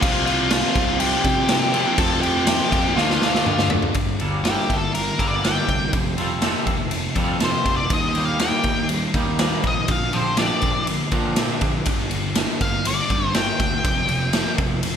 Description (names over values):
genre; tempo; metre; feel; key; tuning
quiet-loud alternative rock; 121 BPM; 4/4; straight; G minor; A4 = 442 Hz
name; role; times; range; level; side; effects
octave-fuzz lead guitar; melody; 0.0-14.5 s; F4 to G5; -24 LUFS; left 2 dB; distortion
sludgy distorted guitar; riff; 0.0-3.9 s; F2 to D4; -26 LUFS; equal; overdrive, slapback echo
thick fuzz guitar; riff; 0.0-15.0 s; F2 to G4; -27 LUFS; right 1 dB; distortion, slapback echo
fuzz picked electric bass; bass; 0.0-15.0 s; F1 to C3; -28 LUFS; equal; overdrive
raw garage drum kit; drums; 0.0-14.9 s; crash cymbal, kick drum, ride cymbal, snare drum, toms; -22 LUFS; equal; none
twangy electric guitar; arpeggios; 4.2-11.7 s; D3 to A4; -28 LUFS; right 1 dB; tremolo, slapback echo
room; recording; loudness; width
moderate lush hall reverb, RT60 1.9 s, studio ambience; big arena sound; -18 LUFS; side -8 dB against mid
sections
0.0-4.0 A section; 4.0-15.0 B section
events
drum fill 3.0-4.0; lead electric guitar solo 4.0-15.0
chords
0.0 Csus4; 2.0 F; 3.0 Dm; 4.0 Gmadd9; 5.9 Fadd9; 7.9 Eb; 9.9 Bbadd9; 11.9 G5; 13.8 Fsus2